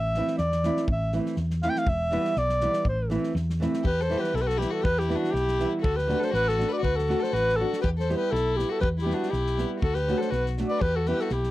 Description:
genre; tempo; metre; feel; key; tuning
balkan folk, Balkan wedding band; 121 BPM; 2/4; swing 55% on 16ths; A minor, E minor from 3.9 s; A4 = 440 Hz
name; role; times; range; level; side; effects
dark alto saxophone; melody; 0.0-11.5 s; F#4 to G5; -27 LUFS; equal; none
hollow-body short-scale fingered electric bass; bass; 0.0-11.5 s; E1 to E2; -28 LUFS; equal; transformer saturation
natural country drum kit; percussion; 0.1-11.5 s; kick drum, snare drum; -32 LUFS; equal; none
nylon-string guitar; accompaniment; 0.2-11.3 s; E3 to G4; -29 LUFS; right 1 dB; none
warm violin; second line; 3.8-11.5 s; D4 to B4; -33 LUFS; left 8 dB; none
room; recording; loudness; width
light reverb; dry, close 1970s-style studio recording; -23 LUFS; side -16 dB against mid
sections
0.0-3.9 A section; 3.9-11.5 B section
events
alto saxophone solo 0.0-3.9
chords
0.0 Am; 1.9 Em; 2.9 Am; 3.9 Em; 5.8 D; 7.8 Em; 9.8 D; 10.8 Em

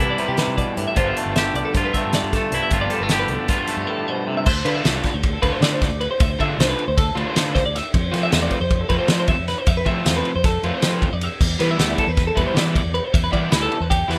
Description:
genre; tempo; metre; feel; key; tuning
math rock and midwest emo; 312 BPM (eighths); 9/8; straight; unclear; A4 = 440 Hz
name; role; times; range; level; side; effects
twangy electric guitar; accompaniment; 0.0-6.2 s; G2 to G4; -26 LUFS; equal; none
twelve-string electric guitar; arpeggios; 0.0-14.2 s; G4 to E5; -27 LUFS; equal; none
crunchy overdriven guitar; riff; 0.0-14.2 s; G2 to F4; -28 LUFS; equal; none
fingered electric bass; bass; 0.0-14.2 s; G1 to F3; -28 LUFS; equal; none
loose indie drum kit; drums; 0.2-14.2 s; crash cymbal, hi-hat, kick drum, ride cymbal, snare drum; -24 LUFS; equal; none
room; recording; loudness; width
little or no reverb; rough home demo mix; -20 LUFS; mono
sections
0.0-4.5 A section; 4.5-14.2 B section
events
none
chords
0.0 Am9/C; 1.0 G9sus4; 4.5 Dm9; 7.9 Fmaj7; 11.4 Em7

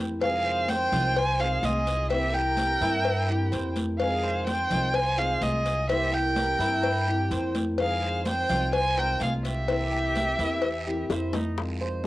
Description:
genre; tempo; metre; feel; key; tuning
latin, Cuban son and guajira; 127 BPM; 4/4; straight; F minor; A4 = 438 Hz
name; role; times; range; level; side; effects
nylon-string guitar; accompaniment; 0.0-12.1 s; C3 to F4; -33 LUFS; left 1 dB; cassette tape
upright bass; bass; 0.0-12.1 s; C2 to G2; -30 LUFS; equal; none
warm violin; melody; 0.2-11.3 s; Eb5 to Ab5; -27 LUFS; equal; cassette tape
warm studio violin section; second line; 0.2-11.3 s; G4 to C5; -36 LUFS; right 1 dB; cassette tape
congas; percussion; 0.2-12.1 s; none; -34 LUFS; equal; none
cowbell and bongos; percussion; 0.2-12.0 s; none; -31 LUFS; left 4 dB; none
guiro; percussion; 0.2-12.0 s; none; -42 LUFS; right 5 dB; none
Cuban tres; arpeggios; 0.5-12.1 s; C4 to C5; -36 LUFS; right 2 dB; cassette tape
room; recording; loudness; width
light reverb; home recording on cassette; -23 LUFS; side -17 dB against mid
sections
0.0-11.6 A section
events
drum fill 11.1-11.6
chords
0.2 Fm7; 2.1 C7; 4.0 Fm7; 5.9 C7; 7.8 Fm7; 9.7 C7

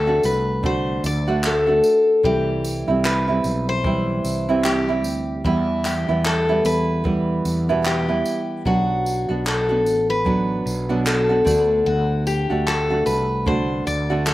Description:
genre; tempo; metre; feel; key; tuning
acoustic pop; 75 BPM; 4/4; swing 60% on 16ths; E minor; A4 = 440 Hz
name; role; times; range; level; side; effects
picked steel-string acoustic guitar; melody; 0.0-14.3 s; E4 to D5; -21 LUFS; left 2 dB; slapback echo
nylon-string guitar; accompaniment; 0.0-14.3 s; E2 to F#4; -22 LUFS; right 3 dB; none
fretless electric bass; bass; 0.0-14.3 s; A1 to E2; -25 LUFS; equal; none
jazz brush drum kit; drums; 0.2-14.3 s; handclaps, kick drum, tambourine; -28 LUFS; equal; none
room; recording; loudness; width
little or no reverb; recorded outdoors, with no room sound; -18 LUFS; side -16 dB against mid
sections
0.0-14.3 A section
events
none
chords
0.0 D; 2.2 C; 5.4 Em; 8.7 Bm; 11.5 D

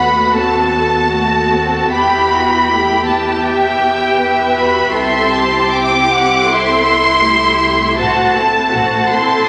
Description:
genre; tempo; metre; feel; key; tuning
classical, slow romantic movement for string orchestra; 79 BPM; 4/4; rubato; E minor; A4 = 440 Hz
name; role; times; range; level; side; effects
rich chamber violin section; melody; 0.0-9.5 s; G5 to D6; -16 LUFS; equal; none
warm chamber violin section; second line; 0.0-9.5 s; E4 to A5; -20 LUFS; equal; none
rich studio viola section; accompaniment; 0.0-9.5 s; A3 to A4; -22 LUFS; equal; none
rich chamber cello section; bass; 0.0-9.5 s; E4 to B4; -22 LUFS; equal; none
rich chamber double bass section; bass; 0.0-9.4 s; A1 to E2; -28 LUFS; equal; none
room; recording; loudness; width
wet scoring stage reverb, RT60 2.0 s; none; -13 LUFS; mono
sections
0.0-9.5 A section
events
none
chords
0.0 B7/D#; 1.9 Em; 4.9 Cmaj7; 8.0 F#dim/A

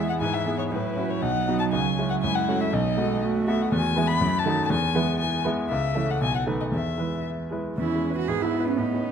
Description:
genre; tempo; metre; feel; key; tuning
quick classical-period movement for piano quartet; 120 BPM; 2/4; straight; E major; A4 = 439 Hz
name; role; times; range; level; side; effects
dark violin; melody; 0.0-9.1 s; B3 to B5; -28 LUFS; left 6 dB; none
warm cello; second line; 0.0-9.1 s; D#3 to G#4; -29 LUFS; right 8 dB; none
bright grand piano; accompaniment; 0.0-9.1 s; B1 to B4; -26 LUFS; equal; none
warm viola; accompaniment; 0.0-9.1 s; B3 to B4; -34 LUFS; right 4 dB; none
room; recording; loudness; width
moderate concert hall reverb, RT60 2.3 s; close, detailed microphones; -22 LUFS; side -7 dB against mid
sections
0.0-7.8 A section; 7.8-9.1 A section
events
none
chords
0.2 E/G#; 0.7 F#m7/A; 1.2 B; 1.7 C#m; 2.2 F#m; 2.7 B7; 3.7 E; 4.2 D#dim/F#; 4.7 E; 5.7 A/C#; 6.2 B7; 6.7 E; 8.3 E/G#

